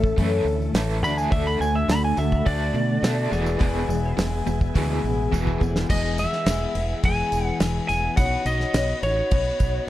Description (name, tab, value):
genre	folk rock and heartland rock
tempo	105 BPM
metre	4/4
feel	straight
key	E mixolydian, E major from 5.9 s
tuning	A4 = 440 Hz
part	lightly driven lead guitar	melody	0.0-9.9 s	C#5 to B5	-27 LUFS	right 1 dB	tape echo
part	picked twelve-string acoustic guitar	accompaniment	0.0-9.9 s	E2 to C#5	-27 LUFS	left 4 dB	none
part	tonewheel organ	sustained chords	0.0-9.9 s	G#3 to D5	-37 LUFS	right 1 dB	fast rotary speaker
part	overdriven electric guitar	riff	0.0-5.9 s	E2 to D4	-28 LUFS	right 1 dB	tremolo
part	fingered electric bass	bass	0.0-9.8 s	E1 to B2	-26 LUFS	equal	none
part	damped 70s drum kit	drums	0.0-9.7 s	crash cymbal, hi-hat, kick drum, snare drum	-25 LUFS	equal	none
part	tambourine	percussion	0.0-9.7 s	none	-45 LUFS	right 5 dB	none
room	studio reverb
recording	dark, warm production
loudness	-20 LUFS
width	side -14 dB against mid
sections	0.0-5.9 A section; 5.9-9.9 B section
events	lead electric guitar solo 0.0-5.9; drum fill 5.3-5.9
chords	0.0 A; 1.0 D; 3.3 E; 8.2 Badd9